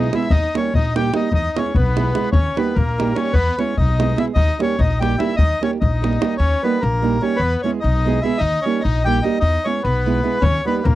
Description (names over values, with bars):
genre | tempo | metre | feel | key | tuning
balkan folk, Balkan wedding band | 297 BPM (eighths) | 5/8 | straight | Eb phrygian dominant | A4 = 442 Hz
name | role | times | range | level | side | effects
accordion | melody | 0.0-11.0 s | Bb4 to G5 | -22 LUFS | left 1 dB | none
bright trumpet | second line | 0.0-11.0 s | Bb3 to G4 | -28 LUFS | left 6 dB | none
nylon-string guitar | accompaniment | 0.0-10.8 s | G3 to G#4 | -20 LUFS | right 6 dB | none
upright bass | bass | 0.0-11.0 s | Bb1 to E2 | -19 LUFS | left 1 dB | none
davul | percussion | 0.0-6.3, 10.4-11.0 s | none | -21 LUFS | left 1 dB | none
room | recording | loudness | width
little or no reverb | dry, close 1970s-style studio recording | -16 LUFS | side -15 dB against mid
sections
0.0-6.4 A section; 6.4-11.0 A section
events
none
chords
0.3 Eb; 1.3 E; 2.3 Eb; 3.3 E; 4.4 Eb; 7.4 E; 8.4 Eb; 9.4 E; 10.4 Eb